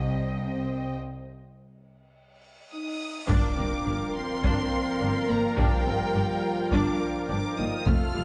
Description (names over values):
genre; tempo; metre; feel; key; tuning
cinematic, epic orchestral film score; 105 BPM; 4/4; straight; G minor; A4 = 441 Hz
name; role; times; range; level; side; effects
rich symphonic violin section; melody; 0.0-8.2 s; C5 to F6; -38 LUFS; equal; none
clear symphonic violin section; second line; 0.0-8.2 s; A4 to G5; -40 LUFS; equal; none
bright symphonic viola section; accompaniment; 0.0-8.2 s; G3 to Eb5; -35 LUFS; equal; none
mellow French horn section; sustained chords; 0.0-8.2 s; G3 to F4; -35 LUFS; equal; none
rich symphonic cello section; bass; 0.0-8.2 s; C2 to G2; -37 LUFS; equal; none
warm symphonic double bass section; bass; 0.0-8.2 s; F1 to C2; -35 LUFS; equal; none
cymbal swell and impact; sound effects; 2.7-5.6 s; none; -42 LUFS; equal; none
warm trombone section; sustained chords; 3.3-8.2 s; F3 to Bb3; -38 LUFS; equal; none
warm woodwind section; sustained chords; 3.3-8.2 s; C4 to G5; -40 LUFS; equal; none
taiko ensemble; drums; 3.3-8.2 s; none; -31 LUFS; equal; none
room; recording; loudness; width
moderate scoring stage reverb, RT60 1.7 s; dark, warm production, nothing above 10.9 kHz; -27 LUFS; mono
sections
0.0-3.3 A section; 3.3-8.2 A section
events
break 1.0-3.3; cymbal swell 2.7-3.3; impact 3.3-5.6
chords
0.0 Cm; 3.3 Gm7